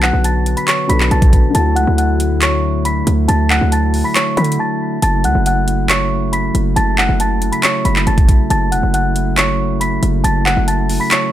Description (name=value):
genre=hip hop, trap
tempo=138 BPM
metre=4/4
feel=half-time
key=F# minor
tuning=A4 = 440 Hz
part: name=small celesta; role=melody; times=0.0-11.3 s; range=C#5 to B6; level=-19 LUFS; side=equal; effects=low-pass filter, ping-pong delay
part: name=dark concert grand piano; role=accompaniment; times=0.0-5.0 s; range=B2 to A4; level=-24 LUFS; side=left 3 dB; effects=low-pass filter
part: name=pipe organ, principal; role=sustained chords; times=0.0-11.3 s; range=C#3 to F#4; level=-20 LUFS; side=equal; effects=none
part: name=hard-hitting 808-style bass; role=bass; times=0.0-11.0 s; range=E1 to D3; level=-16 LUFS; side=equal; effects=none
part: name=trap drum kit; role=drums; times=0.0-11.2 s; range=handclaps, hi-hat, kick drum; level=-16 LUFS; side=equal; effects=none
room=studio reverb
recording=none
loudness=-12 LUFS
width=side -12 dB against mid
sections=0.0-5.0 A section; 5.0-11.3 A section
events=break 4.6-5.0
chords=0.0 Bm; 1.5 Dadd9; 5.0 F#m7